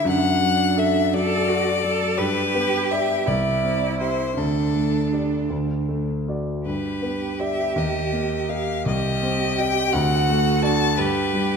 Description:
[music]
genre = classical, slow romantic movement for piano trio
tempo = 52-58 BPM (dotted quarters)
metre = 6/8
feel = rubato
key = unclear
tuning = A4 = 440 Hz
[part]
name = clear violin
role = melody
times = 0.0-11.6 s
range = A4 to A5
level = -24 LUFS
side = left 7 dB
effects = none
[part]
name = clear cello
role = second line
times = 0.0-11.6 s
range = D4 to A4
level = -25 LUFS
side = right 7 dB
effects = none
[part]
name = dark concert grand piano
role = accompaniment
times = 0.0-11.6 s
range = C2 to E5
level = -23 LUFS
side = equal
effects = none
[sound]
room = wet concert hall reverb, RT60 2.0 s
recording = dark, warm production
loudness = -19 LUFS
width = side -6 dB against mid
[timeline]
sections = 0.0-11.6 A section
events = none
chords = 0.1 D/F#; 2.2 G; 3.3 C; 4.4 Dsus4; 5.5 D; 6.7 G; 7.8 Eb; 8.9 Cm; 9.9 D; 11.0 G

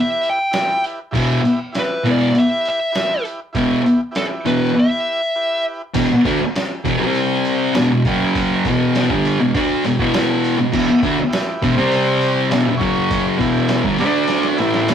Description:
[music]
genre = garage rock duo or trio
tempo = 100 BPM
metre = 4/4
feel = straight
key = E minor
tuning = A4 = 442 Hz
[part]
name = fuzz lead guitar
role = melody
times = 0.0-5.6 s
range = A4 to G5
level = -19 LUFS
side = equal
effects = distortion
[part]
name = combo organ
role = sustained chords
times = 0.0-5.8, 10.7-14.9 s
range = C4 to D5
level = -26 LUFS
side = right 2 dB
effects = none
[part]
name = trip hop sampler-style drum kit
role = drums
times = 0.2-14.9 s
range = crash cymbal, hi-hat, kick drum, snare drum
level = -25 LUFS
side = right 1 dB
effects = none
[part]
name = thick fuzz guitar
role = riff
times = 1.1-14.9 s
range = E2 to D4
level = -15 LUFS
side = equal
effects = distortion
[sound]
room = moderate small room reverb, RT60 0.6 s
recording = rough rehearsal-room recording, warm saturation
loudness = -15 LUFS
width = side -8 dB against mid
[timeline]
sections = 0.0-6.0 A section; 6.0-14.9 B section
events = drum fill 14.3-14.9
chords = 0.0 Em; 6.0 E5; 7.0 C5; 7.8 E5; 8.0 F#5; 8.6 Em; 11.8 C5; 12.5 Em; 12.8 F#5; 13.4 Em; 14.0 D5

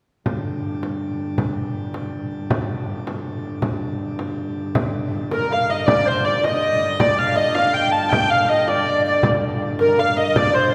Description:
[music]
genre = medieval dance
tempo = 107 BPM (dotted quarters)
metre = 6/8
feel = straight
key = unclear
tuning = A4 = 440 Hz
[part]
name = pipe organ, plenum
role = drone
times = 0.3-10.7 s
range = G2 to D3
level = -30 LUFS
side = equal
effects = none
[part]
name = frame drum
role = percussion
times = 0.3-10.6 s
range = none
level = -27 LUFS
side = equal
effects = none
[part]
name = dark hurdy-gurdy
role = melody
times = 5.3-10.7 s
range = Bb4 to A5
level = -21 LUFS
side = equal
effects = none
[part]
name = tenor recorder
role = second line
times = 5.3-10.7 s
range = Bb4 to A5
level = -24 LUFS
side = equal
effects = none
[sound]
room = wet cathedral reverb, RT60 4.3 s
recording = recorded in a church or concert hall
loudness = -21 LUFS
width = mono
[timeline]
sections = 0.3-4.8 A section; 4.8-10.7 B section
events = none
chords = none

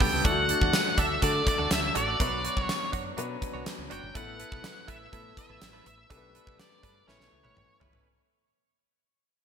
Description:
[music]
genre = 1980s-style pop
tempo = 123 BPM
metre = 4/4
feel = straight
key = unclear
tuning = A4 = 440 Hz
[part]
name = octave-fuzz lead guitar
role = melody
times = 0.0-7.8 s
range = C#5 to G5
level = -30 LUFS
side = equal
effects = distortion
[part]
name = warm baby grand piano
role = accompaniment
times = 0.0-8.1 s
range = F#3 to B4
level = -35 LUFS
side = left 5 dB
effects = none
[part]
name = direct-recorded clean electric guitar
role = riff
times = 0.0-8.1 s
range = B3 to C#5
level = -35 LUFS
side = right 8 dB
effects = wide subtle chorus
[part]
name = woody fretless electric bass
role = bass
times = 0.0-8.0 s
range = F#1 to D3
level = -36 LUFS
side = equal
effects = none
[part]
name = gated 80s drum kit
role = drums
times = 0.0-8.0 s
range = hi-hat, kick drum, snare drum, tambourine, toms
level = -29 LUFS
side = equal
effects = gated reverb
[sound]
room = moderate lush hall reverb, RT60 1.8 s, small room ambience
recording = bright 1980s-style digital production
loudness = -24 LUFS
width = side -8 dB against mid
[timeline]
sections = 0.0-8.1 A section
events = fade-out 0.0-8.1; drum fill 7.1-8.1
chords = 0.2 D; 2.2 Bmadd9; 4.2 Asus2; 6.1 Gadd9/B; 7.1 Aadd9

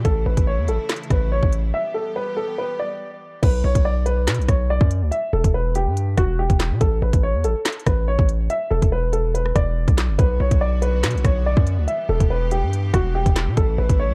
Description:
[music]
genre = hip hop, drill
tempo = 142 BPM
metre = 4/4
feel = half-time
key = unclear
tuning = A4 = 440 Hz
[part]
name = warm upright piano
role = melody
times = 0.0-14.1 s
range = F#4 to E5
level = -27 LUFS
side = equal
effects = low-pass filter
[part]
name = bright symphonic string section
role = sustained chords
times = 0.0-3.4, 10.2-14.1 s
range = C#3 to G4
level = -38 LUFS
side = equal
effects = none
[part]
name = distorted 808-style bass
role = bass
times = 0.0-14.1 s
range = E1 to B2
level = -23 LUFS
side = equal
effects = distortion
[part]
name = drill drum kit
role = drums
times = 0.0-14.0 s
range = crash cymbal, handclaps, hi-hat, kick drum, rim click, snare drum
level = -22 LUFS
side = equal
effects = none
[sound]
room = little or no reverb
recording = dark, warm production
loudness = -20 LUFS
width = mono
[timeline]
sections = 0.0-3.4 A section; 3.4-14.1 B section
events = break 1.7-3.4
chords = 0.0 A; 1.7 Em; 3.4 Bm; 5.1 Em; 6.8 A5; 8.5 E5; 10.2 Bm; 11.9 Em; 13.6 A

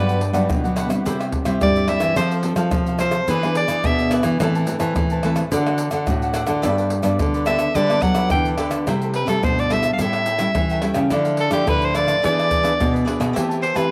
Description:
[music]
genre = samba and choro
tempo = 107 BPM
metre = 4/4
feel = straight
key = G major, C major from 8.9 s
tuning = A4 = 440 Hz
[part]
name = edgy soprano saxophone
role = melody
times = 0.0-13.9 s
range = G4 to G5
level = -24 LUFS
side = equal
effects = none
[part]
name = cavaquinho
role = accompaniment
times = 0.0-13.9 s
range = D4 to A5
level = -31 LUFS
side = equal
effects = cassette tape
[part]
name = nylon-string guitar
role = accompaniment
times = 0.0-13.9 s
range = G2 to A4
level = -27 LUFS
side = equal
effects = cassette tape
[part]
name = nylon-string guitar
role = bass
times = 0.0-13.9 s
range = G2 to G3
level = -24 LUFS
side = equal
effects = none
[part]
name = egg shaker, pandeiro, tamborim and surdo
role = percussion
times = 0.1-13.9 s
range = none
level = -27 LUFS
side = equal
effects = none
[sound]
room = moderate spring reverb, RT60 2.1 s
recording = home recording on cassette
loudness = -20 LUFS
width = mono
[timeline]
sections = 0.0-8.9 A section; 8.9-13.9 B section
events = soprano saxophone solo 0.0-8.9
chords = 0.0 Gmaj7; 1.0 C; 2.2 F; 3.3 E7; 4.4 Amadd9; 5.5 D; 6.6 Gadd9; 8.9 C6; 10.0 A7; 11.1 Dmadd9; 12.2 E7; 13.4 Am7/E

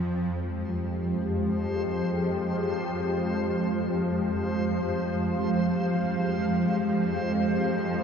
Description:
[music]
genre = dark ambient drone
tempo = free time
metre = none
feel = none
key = F minor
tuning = A4 = 442 Hz
[part]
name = swarming drone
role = drone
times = 0.0-8.0 s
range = F2 to F3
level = -28 LUFS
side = equal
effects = built-in reverb
[part]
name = sweeping resonant pad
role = sustained chords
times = 0.1-8.0 s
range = Ab3 to F5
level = -28 LUFS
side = equal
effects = chorus, shimmer reverb
[part]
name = backwards swelling texture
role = texture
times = 0.9-8.0 s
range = C5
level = -36 LUFS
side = equal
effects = built-in reverb, shimmer reverb
[sound]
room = wet cathedral reverb, RT60 4.8 s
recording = dark, warm production, nothing above 7.7 kHz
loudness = -25 LUFS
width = side -7 dB against mid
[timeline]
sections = 0.1-8.0 A section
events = none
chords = 0.1 Fmadd9

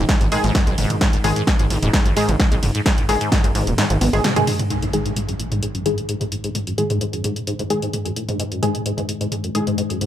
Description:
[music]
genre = driving peak-time techno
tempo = 130 BPM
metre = 4/4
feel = straight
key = G# minor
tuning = A4 = 445 Hz
[part]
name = acid bass, saw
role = riff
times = 0.0-10.1 s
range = F#2 to B3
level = -25 LUFS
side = left 1 dB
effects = lush chorus, sidechain pumping, digital delay
[part]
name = gritty driven synth bass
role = bass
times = 0.0-4.2 s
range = D#1 to B1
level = -21 LUFS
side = equal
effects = sidechain pumping
[part]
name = analog drone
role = drone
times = 0.0-10.1 s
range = G#2 to D#3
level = -29 LUFS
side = equal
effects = chorus, sidechain pumping
[part]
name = electronic kick drum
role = drums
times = 0.1-3.4 s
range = none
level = -18 LUFS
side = equal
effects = overdrive
[part]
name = punchy analog drum machine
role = drums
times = 0.1-10.1 s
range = hi-hat, ride cymbal, snare drum, toms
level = -24 LUFS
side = equal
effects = none
[part]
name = filtered dub chord stab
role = stabs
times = 0.3-9.6 s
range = D#3 to G#4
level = -24 LUFS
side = left 1 dB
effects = chorus, sidechain pumping, digital delay
[part]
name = impact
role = sound effects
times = 4.7-6.5 s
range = none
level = -32 LUFS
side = equal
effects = none
[sound]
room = light reverb, digital ambience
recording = none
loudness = -17 LUFS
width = side -11 dB against mid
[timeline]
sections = 0.0-4.7 A section; 4.7-10.1 B section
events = drop 0.0-4.7; kick drops out 3.8-4.7; drum fill 4.0-4.7; band accent 4.2; impact 4.7-6.5; filter sweep on acid bass 4.7-10.1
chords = 0.0 G#5

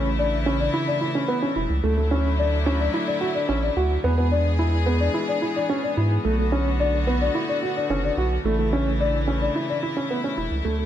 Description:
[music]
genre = piano and strings electronica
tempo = 109 BPM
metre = 4/4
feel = straight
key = unclear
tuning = A4 = 439 Hz
[part]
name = clear studio string section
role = sustained chords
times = 0.0-10.9 s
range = C#3 to G#4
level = -28 LUFS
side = left 1 dB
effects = none
[part]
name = dark upright piano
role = riff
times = 0.0-10.9 s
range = A3 to F#4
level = -24 LUFS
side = equal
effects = digital delay
[part]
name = round analog bass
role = bass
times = 0.0-10.9 s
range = E1 to G#2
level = -23 LUFS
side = equal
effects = none
[sound]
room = light reverb, studio reverb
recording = none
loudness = -20 LUFS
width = side -10 dB against mid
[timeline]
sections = 0.0-10.9 A section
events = fade-out 9.2-10.9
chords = 0.0 A; 1.8 Dadd9; 4.0 E; 6.2 Bm7; 8.4 A

